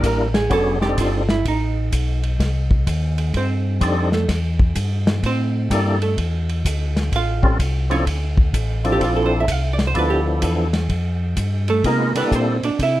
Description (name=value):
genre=soul jazz organ trio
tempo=127 BPM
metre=4/4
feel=swing 66% on 8ths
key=C mixolydian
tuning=A4 = 440 Hz
part: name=percussive tonewheel organ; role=melody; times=0.0-12.6 s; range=E#3 to Bb4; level=-21 LUFS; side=left 1 dB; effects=slow rotary speaker, overdrive, chorus vibrato
part: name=archtop guitar, miked and amplified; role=accompaniment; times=0.0-13.0 s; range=A3 to E#5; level=-23 LUFS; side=right 4 dB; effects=none
part: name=mellow tonewheel organ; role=bass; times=0.0-13.0 s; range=F1 to C3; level=-21 LUFS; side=equal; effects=overdrive, chorus vibrato, slow rotary speaker
part: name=warm soul drum kit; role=drums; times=0.0-12.9 s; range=hi-hat, kick drum, ride cymbal, snare drum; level=-23 LUFS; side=equal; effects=none
room=light reverb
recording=none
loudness=-17 LUFS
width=side -15 dB against mid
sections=0.0-13.0 A section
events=hollow-body jazz guitar solo 0.0-13.0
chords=0.0 C13 (rootless); 0.5 F13; 4.3 C13; 6.2 Dsus2; 7.1 A7alt; 8.1 Dm7; 10.0 G13; 11.8 C13